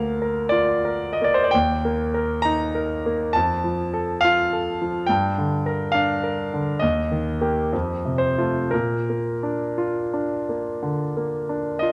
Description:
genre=classical, romantic nocturne for solo piano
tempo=56-70 BPM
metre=4/4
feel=rubato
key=Bb major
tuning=A4 = 440 Hz
part: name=clear concert grand piano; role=solo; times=0.0-11.9 s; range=D2 to Bb5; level=-23 LUFS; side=equal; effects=none
room=moderate recital hall reverb, RT60 1.4 s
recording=close, detailed microphones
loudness=-23 LUFS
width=mono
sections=0.0-11.9 A section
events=none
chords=0.0 Bb/D; 1.5 Eb; 3.3 F; 5.1 Gm; 6.8 Eb; 7.7 F; 8.7 Bb

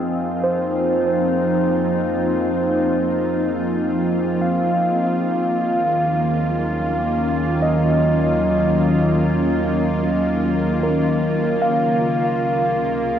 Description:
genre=ambient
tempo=75 BPM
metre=4/4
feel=straight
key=unclear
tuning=A4 = 440 Hz
part: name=glassy FM pad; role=sustained chords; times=0.0-13.2 s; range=C3 to F5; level=-20 LUFS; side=left 1 dB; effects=ensemble chorus, built-in reverb
part: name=muted felt-like synth keys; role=arpeggios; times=0.0-13.2 s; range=Bb4 to F5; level=-22 LUFS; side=right 1 dB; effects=chorus, diffuse ambient delay, shimmer reverb
part: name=round analog bass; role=bass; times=0.0-13.2 s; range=Db2 to F2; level=-34 LUFS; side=equal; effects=none
part: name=bowed-like drone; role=drone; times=0.0-13.2 s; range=Bb3 to F4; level=-25 LUFS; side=equal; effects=built-in reverb
room=wet cathedral reverb, RT60 5.1 s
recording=cassette tape, nothing above 7.8 kHz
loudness=-17 LUFS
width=side -9 dB against mid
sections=0.0-13.2 A section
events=fade-in on analog synth bass 0.0-13.2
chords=0.0 Fm7; 5.2 Ebm11; 11.6 Bbm9/Db

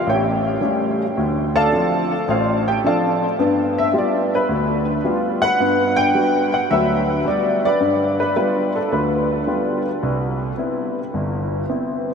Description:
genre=solo jazz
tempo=108 BPM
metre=4/4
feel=swing 69% on 8ths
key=G major from 5.6 s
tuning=A4 = 439 Hz
part: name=warm grand piano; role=solo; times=0.0-12.1 s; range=G1 to A5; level=-17 LUFS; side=equal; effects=analog chorus, ping-pong delay
room=wet huge ambient reverb, RT60 7.7 s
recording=dreamy mix soaked in reverb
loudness=-17 LUFS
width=side -6 dB against mid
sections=0.0-5.6 A section; 5.6-12.1 B section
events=grand piano solo 0.0-5.6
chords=0.1 A7; 1.2 Dm7; 3.4 G7; 5.6 Gmaj7; 7.8 G7; 10.0 Cmaj7

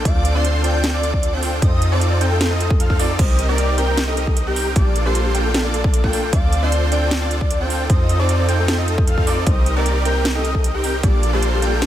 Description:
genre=future bass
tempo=153 BPM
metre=4/4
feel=half-time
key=Bb major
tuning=A4 = 441 Hz
part: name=soft octave-layered synth lead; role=melody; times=0.0-11.9 s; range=G4 to F5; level=-26 LUFS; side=left 2 dB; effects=chorus, tremolo, sidechain pumping, digital delay
part: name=airy dreamy lead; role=arpeggios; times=0.0-11.9 s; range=C5 to G5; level=-28 LUFS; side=equal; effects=chorus, sidechain pumping, digital delay
part: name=supersaw chords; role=riff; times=0.0-11.9 s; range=Bb3 to G5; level=-23 LUFS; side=right 1 dB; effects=sidechain pumping
part: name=warm 808-style bass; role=bass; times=0.0-11.9 s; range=Bb1 to F2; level=-20 LUFS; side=equal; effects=sidechain pumping
part: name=electronic kick drum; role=drums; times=0.1-11.1 s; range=none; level=-18 LUFS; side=equal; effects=overdrive
part: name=trap drum kit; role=drums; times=0.1-11.9 s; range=crash cymbal, hi-hat, snare drum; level=-25 LUFS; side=right 1 dB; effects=overdrive
room=little or no reverb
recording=none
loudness=-15 LUFS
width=side -12 dB against mid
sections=0.0-11.9 A section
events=none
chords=0.1 Dm7; 1.6 F7; 3.2 Cm7; 4.8 Bbmaj7; 6.3 Dm7; 7.9 F7; 9.5 Cm7; 11.0 Bbmaj7

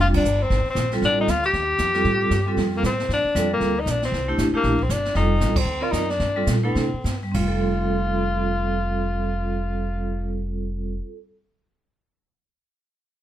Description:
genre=jazz, small-group swing and bop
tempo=198-233 BPM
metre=4/4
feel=swing 60% on 8ths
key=F mixolydian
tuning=A4 = 438 Hz
part: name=breathy tenor saxophone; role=melody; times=0.0-10.5 s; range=Bb3 to G4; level=-24 LUFS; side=left 2 dB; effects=none
part: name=vibraphone with medium hard mallets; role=accompaniment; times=0.0-11.2 s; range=G3 to D5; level=-25 LUFS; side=right 2 dB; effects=none
part: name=upright bass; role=bass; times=0.0-11.0 s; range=F1 to C3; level=-25 LUFS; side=equal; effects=none
part: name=jazz brush drum kit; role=drums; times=0.0-7.6 s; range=brushed snare drum, crash cymbal, hi-hat, kick drum, snare drum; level=-30 LUFS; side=equal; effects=none
room=light reverb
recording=none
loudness=-20 LUFS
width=side -12 dB against mid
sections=0.0-7.3 A section; 7.3-9.8 B section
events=band accent 0.1, 5.5; slowing down 5.1-7.3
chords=0.0 Bb9; 1.0 F9; 3.1 Gm7; 4.1 C9; 5.1 F9; 5.7 D7alt; 6.2 Gm7; 6.8 C5; 7.3 Fadd9

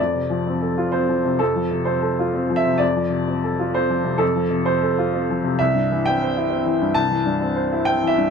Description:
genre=neoclassical minimalist piano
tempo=130 BPM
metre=3/4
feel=rubato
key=F major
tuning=A4 = 438 Hz
part: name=clear upright piano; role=solo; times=0.0-8.3 s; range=C2 to A5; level=-18 LUFS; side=equal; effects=none
room=light reverb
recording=close, detailed microphones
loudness=-18 LUFS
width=side -6 dB against mid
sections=0.0-8.3 A section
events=none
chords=0.0 F; 5.6 C

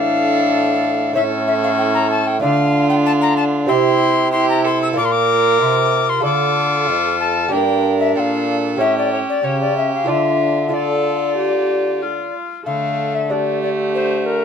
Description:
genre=classical, renaissance-style consort dance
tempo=94 BPM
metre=4/4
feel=straight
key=D minor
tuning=A4 = 436 Hz
part: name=alto recorder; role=melody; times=0.0-14.4 s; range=Bb4 to E6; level=-19 LUFS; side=left 5 dB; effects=none
part: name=warm violin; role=second line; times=0.0-14.4 s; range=A3 to Bb4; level=-22 LUFS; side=right 7 dB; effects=none
part: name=lute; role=accompaniment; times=0.0-14.4 s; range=F2 to E5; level=-24 LUFS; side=right 4 dB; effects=none
part: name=warm viola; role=accompaniment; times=0.0-14.4 s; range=C#4 to A4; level=-21 LUFS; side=left 2 dB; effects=none
part: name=bright trombone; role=bass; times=0.0-14.4 s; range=F2 to D3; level=-22 LUFS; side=right 3 dB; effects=none
room=light reverb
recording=minimal, uncompressed stereo recording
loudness=-15 LUFS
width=side -7 dB against mid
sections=0.0-12.7 A section; 12.7-14.4 B section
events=none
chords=0.0 Asus4; 1.2 A; 2.4 Dm; 3.7 C; 5.0 Bb; 6.2 Dm; 7.5 Gm; 8.8 A7; 10.1 Dm

